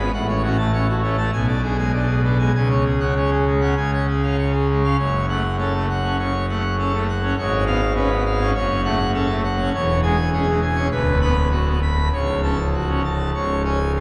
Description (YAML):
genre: classical, organ toccata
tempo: 100 BPM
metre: 4/4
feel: straight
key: F# minor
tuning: A4 = 440 Hz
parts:
  - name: pipe organ, full organ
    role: solo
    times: 0.0-14.0 s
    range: C#1 to B5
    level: -20 LUFS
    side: equal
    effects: none
room: wet church reverb, RT60 3.7 s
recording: heard from further back in the room, vinyl crackle, nothing above 10.7 kHz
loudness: -20 LUFS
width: mono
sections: 0.0-5.0 A section; 5.0-14.0 B section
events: none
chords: 0.1 F#m/A; 1.3 G#dim/B; 2.5 C#sus4; 3.8 C#; 5.0 F#m; 7.4 C#7/G#; 8.6 F#m; 9.7 C#m/E; 10.9 Bm/D; 12.1 F#m/C#; 13.4 C#5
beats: | 0.14 0.73 1.33 1.93 | 2.54 3.16 3.77 4.38 | 4.99 5.60 6.19 6.78 | 7.38 7.96 8.55 9.15 | 9.74 10.33 10.93 11.53 | 12.14 12.75 13.35 13.96